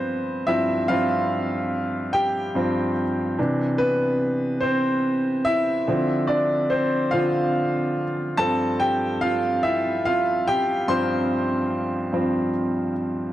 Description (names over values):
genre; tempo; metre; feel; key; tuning
R&B; 48 BPM (dotted quarters); 6/8; straight; unclear; A4 = 442 Hz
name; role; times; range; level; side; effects
clear baby grand piano; solo; 0.0-13.3 s; G2 to C6; -20 LUFS; equal; none
room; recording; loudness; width
studio reverb; dry, close 1970s-style studio recording; -20 LUFS; side -13 dB against mid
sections
0.0-13.3 A section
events
grand piano solo 0.0-13.3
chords
0.0 G7sus4; 3.4 Cmaj9; 5.9 Dm9; 8.4 G9sus4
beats
| 0.88 2.13 | 3.38 4.63 | 5.88 7.13 | 8.38 9.63 | 10.88 12.13